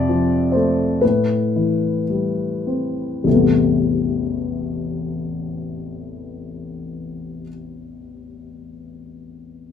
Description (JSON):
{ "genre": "classical, lyrical solo piano", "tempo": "47-66 BPM", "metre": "4/4", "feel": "rubato", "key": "A minor", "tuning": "A4 = 439 Hz", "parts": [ { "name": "dark concert grand piano", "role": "solo", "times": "0.0-9.7 s", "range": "A1 to E5", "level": "-19 LUFS", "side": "left 3 dB", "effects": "none" } ], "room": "light reverb", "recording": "minimal, uncompressed stereo recording", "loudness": "-17 LUFS", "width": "side -8 dB against mid", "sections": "0.0-3.3 A section; 3.3-8.1 B section", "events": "slowing down 0.0-3.3", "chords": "0.0 Dm7/F; 1.0 Am9" }